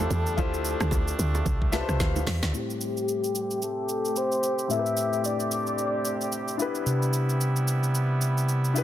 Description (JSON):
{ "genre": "amapiano", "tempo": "111 BPM", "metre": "4/4", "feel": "swing 58% on 16ths", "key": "A minor", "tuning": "A4 = 440 Hz", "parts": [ { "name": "soft octave-layered synth lead", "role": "melody", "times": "0.0-6.6 s", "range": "G4 to E5", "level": "-30 LUFS", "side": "left 2 dB", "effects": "chorus, low-pass filter, digital delay" }, { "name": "warm grand piano", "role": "accompaniment", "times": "0.0-8.8 s", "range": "A2 to A5", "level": "-32 LUFS", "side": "left 5 dB", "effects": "low-pass filter" }, { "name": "clear brass ensemble", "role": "sustained chords", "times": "0.0-8.8 s", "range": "C3 to G4", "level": "-32 LUFS", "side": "right 2 dB", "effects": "low-pass filter" }, { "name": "woody log drum bass", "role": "bass", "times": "0.0-2.5 s", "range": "C2 to E2", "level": "-27 LUFS", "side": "equal", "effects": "none" }, { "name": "afro-pop drum kit", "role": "drums", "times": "0.0-8.8 s", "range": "hi-hat, kick drum, rim click, shaker, snare drum, toms", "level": "-31 LUFS", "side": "equal", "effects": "none" }, { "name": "bongos and congas", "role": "percussion", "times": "0.0-2.4 s", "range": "none", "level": "-35 LUFS", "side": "right 6 dB", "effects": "none" }, { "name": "round analog bass", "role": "bass", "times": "6.9-8.8 s", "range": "C3", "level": "-24 LUFS", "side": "equal", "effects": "none" } ], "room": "little or no reverb", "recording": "dense, heavily limited modern master", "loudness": "-24 LUFS", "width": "side -12 dB against mid", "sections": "0.0-2.5 A section; 2.5-8.8 B section", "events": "drop 0.0-2.5; grand piano fill 1.5-2.5; drum fill 2.0-2.5; filter sweep 2.5-8.8", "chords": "0.0 Dm11; 2.5 Am9; 6.6 Cmaj7" }